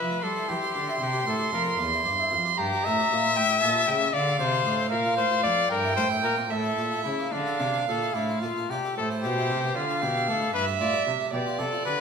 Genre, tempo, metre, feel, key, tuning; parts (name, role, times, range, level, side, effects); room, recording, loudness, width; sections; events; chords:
classical, baroque-style sonata movement with continuo; 76 BPM (dotted quarters); 6/8; rubato; D minor, A minor from 9.0 s; A4 = 437 Hz
warm trumpet; melody; 0.0-12.0 s; D4 to E5; -26 LUFS; left 5 dB
warm violin; second line; 0.0-12.0 s; C5 to C6; -28 LUFS; right 5 dB
harpsichord; accompaniment; 0.0-12.0 s; E2 to D5; -33 LUFS; equal
dark cello; bass; 0.0-12.0 s; E2 to G3; -32 LUFS; right 2 dB
wet recital hall reverb, RT60 1.4 s; recorded in a church or concert hall; -23 LUFS; side -6 dB against mid
0.0-9.0 A section; 9.0-12.0 A section
0.0 C; 1.0 C7; 2.6 Edim/G; 3.4 A7; 4.1 Dm; 4.9 Bb5; 5.7 Edim/G; 6.5 A; 7.3 Dm; 9.0 Am; 9.8 Dm; 10.5 G7